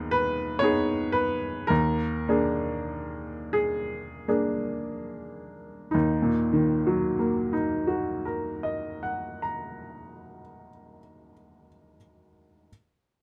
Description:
classical, romantic nocturne for solo piano; 23-43 BPM (dotted quarters); 6/8; rubato; Eb minor; A4 = 440 Hz
clear upright piano; solo; 0.0-12.7 s; Eb2 to Bb5; -28 LUFS; equal
little or no reverb; close, detailed microphones; -27 LUFS; mono
0.0-5.9 A section; 5.9-10.5 B section
slowing down 0.0-5.9
0.0 Abm/Eb; 1.7 Bb7/Eb; 5.9 Ebm
0.14 | 1.70 3.56 | 5.93 8.20

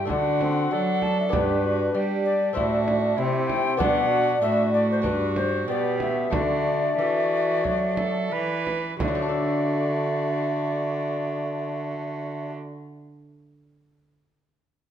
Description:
classical, renaissance-style consort dance; 87-98 BPM; 4/4; straight; D mixolydian; A4 = 440 Hz
mellow alto recorder; melody; 0.0-12.5 s; B4 to A5; -28 LUFS; left 4 dB
warm viola; second line; 0.0-12.5 s; D4 to B4; -31 LUFS; right 5 dB
lute; accompaniment; 0.0-13.4 s; G2 to B4; -32 LUFS; left 5 dB
mellow bassoon; accompaniment; 0.0-12.5 s; A3 to D4; -27 LUFS; equal
rich cello; bass; 0.0-12.5 s; G2 to G3; -28 LUFS; right 2 dB
frame drum; percussion; 0.1-9.3 s; -32 LUFS; right 4 dB
wet recital hall reverb, RT60 1.5 s; -22 LUFS; side -9 dB against mid
0.0-9.0 A section; 9.0-11.8 B section
slowing down 2.6-9.0
0.1 D; 1.3 G; 2.6 Am; 3.8 Bm; 5.0 G; 6.3 D
0.10 0.72 | 1.33 1.95 2.56 3.18 | 3.79 4.41 5.04 5.68 | 6.32 6.98 7.64 8.32 | 9.01 9.70 10.39 11.07

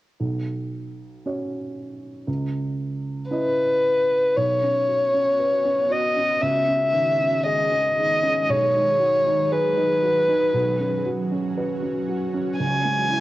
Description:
neoclassical piano and strings; 58 BPM; 4/4; rubato; A4 = 440 Hz
dark upright piano; accompaniment; 0.2-13.2 s; B1 to D#5; -27 LUFS; right 2 dB; cassette tape
dark violin; melody; 3.3-13.2 s; B4 to G#5; -19 LUFS; left 1 dB; cassette tape
ethereal airy pad; sustained chords; 5.0-13.2 s; D#3 to G#4; -30 LUFS; right 2 dB; ensemble chorus, built-in reverb, tremolo, cassette tape
light reverb, studio ambience; home recording on cassette; -20 LUFS; side -16 dB against mid
0.2-4.4 A section; 4.4-13.2 B section
0.2 Bsus2; 2.3 C#madd9; 4.4 Bsus2; 6.4 C#madd9; 8.5 G#m7/B; 10.5 Bsus2; 12.6 C#m
| 0.19 1.24 2.28 3.31 | 4.37 5.40 6.43 7.46 | 8.49 9.52 10.54 11.56 | 12.58

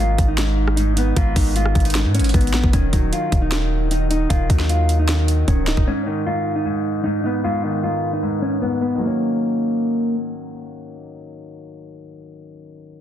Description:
hip hop, trap; 153 BPM; 4/4; half-time; Eb minor; A4 = 438 Hz
mellow electric guitar; melody; 0.0-10.1 s; Bb3 to F4; -22 LUFS; right 2 dB; low-pass filter, tape echo
warm concert grand piano; accompaniment; 0.0-13.0 s; Ab2 to Eb4; -26 LUFS; left 4 dB; low-pass filter
warm 808-style bass; bass; 0.0-5.9 s; Db1 to Ab2; -19 LUFS; equal
trap drum kit; drums; 0.2-5.9 s; hi-hat, kick drum, rim click, snare drum; -20 LUFS; equal
light reverb; dense, heavily limited modern master; -17 LUFS; side -10 dB against mid
0.0-2.7 A section; 2.7-9.0 B section; 9.0-12.1 C section
filter sweep 2.7-9.0
0.0 Abm; 2.7 Ebm; 5.9 Abm; 9.0 Ebm7
0.38 0.77 | 1.17 1.56 1.95 2.34 | 2.73 3.13 3.52 3.91 | 4.30 4.70 5.09 5.48 | 5.87 6.26 6.66 7.05 | 7.44 7.83 8.22 8.62 | 9.01 9.40 9.79 10.19 | 10.58 10.97 11.36 11.75

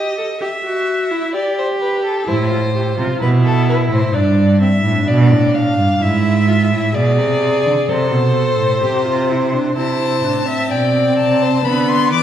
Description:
classical, baroque-style fugue for string quartet; 64 BPM; 4/4; straight; A minor; A4 = 441 Hz
rich violin; second line; 0.0-12.2 s; A4 to F5; -19 LUFS; left 1 dB
warm viola; accompaniment; 0.0-12.2 s; B3 to A4; -20 LUFS; right 1 dB
warm cello; bass; 2.3-12.2 s; G2 to E3; -16 LUFS; right 2 dB
rich violin; melody; 9.8-12.2 s; G5 to D6; -20 LUFS; left 7 dB
wet recital hall reverb, RT60 1.5 s; heard from further back in the room; -13 LUFS; side -10 dB against mid
0.0-9.8 A section; 9.8-12.2 B section
0.4 Em; 2.3 Am; 4.1 G; 6.0 E7/G#; 7.9 Am; 11.7 Bm/D
0.42 1.35 | 2.28 3.21 4.15 5.08 | 6.01 6.95 7.88 8.82 | 9.77 10.71 11.65

